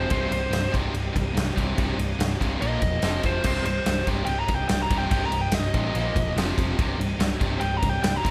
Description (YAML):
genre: hard rock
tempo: 144 BPM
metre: 4/4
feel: straight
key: C minor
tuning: A4 = 442 Hz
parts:
  - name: biting lead guitar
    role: melody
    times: 0.0-8.3 s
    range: C5 to Bb5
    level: -30 LUFS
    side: equal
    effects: overdrive, slapback echo
  - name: percussive tonewheel organ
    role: sustained chords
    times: 0.0-8.3 s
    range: F3 to Eb5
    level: -41 LUFS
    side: equal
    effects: none
  - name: high-gain distorted guitar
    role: riff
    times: 0.0-8.3 s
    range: C2 to Eb4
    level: -38 LUFS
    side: equal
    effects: none
  - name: overdriven electric guitar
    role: riff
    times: 0.0-8.3 s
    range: C2 to Bb3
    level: -36 LUFS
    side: equal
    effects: none
  - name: tight distorted guitar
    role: riff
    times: 0.0-8.3 s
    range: C2 to Bb3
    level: -34 LUFS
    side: equal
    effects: distortion
  - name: picked electric bass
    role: bass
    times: 0.0-8.3 s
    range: C1 to Bb1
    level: -31 LUFS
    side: equal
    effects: none
  - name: huge arena drum kit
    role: drums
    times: 0.1-8.3 s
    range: crash cymbal, kick drum, ride cymbal, snare drum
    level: -29 LUFS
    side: equal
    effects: none
room: studio reverb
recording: none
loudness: -25 LUFS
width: mono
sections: 0.0-8.3 A section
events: lead electric guitar solo 0.0-8.3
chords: 0.1 Cm; 2.6 Bb5; 3.0 F5; 3.4 Cm; 5.9 Bb5; 6.4 F5; 6.8 Cm